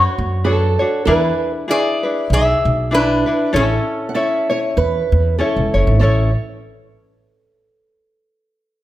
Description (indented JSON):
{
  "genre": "Hawaiian",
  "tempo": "97 BPM",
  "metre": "4/4",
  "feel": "swing 57% on 8ths",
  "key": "A major",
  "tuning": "A4 = 440 Hz",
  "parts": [
    { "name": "metal-body resonator slide guitar", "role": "melody", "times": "0.0-5.4 s", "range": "C#4 to E5", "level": "-18 LUFS", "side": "equal", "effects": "none" },
    { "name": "tenor ukulele", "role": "accompaniment", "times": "0.0-6.3 s", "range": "C#4 to C#5", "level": "-20 LUFS", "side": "left 3 dB", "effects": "none" },
    { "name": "upright bass", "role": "bass", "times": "0.0-6.3 s", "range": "E1 to F#2", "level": "-17 LUFS", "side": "equal", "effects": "none" },
    { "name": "fingerpicked acoustic archtop guitar", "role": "second line", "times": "0.4-6.3 s", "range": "A4 to F#5", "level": "-20 LUFS", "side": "right 5 dB", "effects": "none" }
  ],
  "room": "moderate recital hall reverb, RT60 1.2 s",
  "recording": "none",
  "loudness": "-14 LUFS",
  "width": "side -14 dB against mid",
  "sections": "0.0-6.0 A section; 6.0-8.5 B section",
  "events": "none",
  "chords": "0.0 Bmadd9; 1.1 E7; 3.5 A"
}